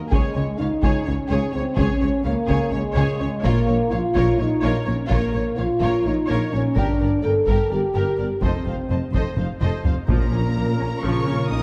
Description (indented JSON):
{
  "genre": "cinematic, epic orchestral film score",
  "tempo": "253 BPM (eighths)",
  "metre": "7/8",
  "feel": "straight",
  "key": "unclear",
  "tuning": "A4 = 440 Hz",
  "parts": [
    { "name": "mellow French horn section", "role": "sustained chords", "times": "0.0-11.6 s", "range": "Ab3 to A4", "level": "-26 LUFS", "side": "equal", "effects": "none" },
    { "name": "rich studio violin section", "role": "melody", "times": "0.1-11.6 s", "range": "Ab4 to Eb6", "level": "-37 LUFS", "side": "equal", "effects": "none" },
    { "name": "rich symphonic violin section", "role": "second line", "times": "0.1-11.6 s", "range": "F4 to F5", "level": "-36 LUFS", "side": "equal", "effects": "none" },
    { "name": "rich symphonic viola section", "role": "accompaniment", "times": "0.1-11.6 s", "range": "F3 to Db5", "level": "-33 LUFS", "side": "equal", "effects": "none" },
    { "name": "dark tuba", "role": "bass", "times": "0.1-11.6 s", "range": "F1 to Db2", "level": "-31 LUFS", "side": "equal", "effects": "none" },
    { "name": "rich studio double bass section", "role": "bass", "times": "0.1-11.6 s", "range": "F1 to Db2", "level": "-29 LUFS", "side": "equal", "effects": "none" },
    { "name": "rich symphonic cello section", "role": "bass", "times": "0.1-11.6 s", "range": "F2 to Eb3", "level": "-30 LUFS", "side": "equal", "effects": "none" },
    { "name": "taiko ensemble", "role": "drums", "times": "0.1-10.5 s", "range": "none", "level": "-27 LUFS", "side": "equal", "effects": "none" },
    { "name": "timpani", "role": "percussion", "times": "10.1-10.8 s", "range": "Bb2", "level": "-33 LUFS", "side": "equal", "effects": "none" }
  ],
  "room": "moderate scoring stage reverb, RT60 2.1 s",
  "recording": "dark, warm production",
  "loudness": "-21 LUFS",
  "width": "mono",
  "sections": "0.0-10.1 A section; 10.1-11.6 B section",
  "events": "drum fill 9.4-10.1",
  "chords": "0.1 Db5; 3.4 Bbm; 6.8 Gm; 8.4 F7; 10.1 Bbm",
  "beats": "| 0.12 0.36 0.59 0.83 1.07 1.31 1.54 | 1.78 2.02 2.25 2.49 2.73 2.97 3.20 | 3.44 3.68 3.92 4.15 4.39 4.63 4.87 | 5.10 5.34 5.58 5.82 6.05 6.29 6.53 | 6.77 7.00 7.24 7.48 7.72 7.95 8.19 | 8.43 8.66 8.90 9.14 9.38 9.61 9.85 | 10.09 10.32 10.56 10.80 11.04 11.27 11.51"
}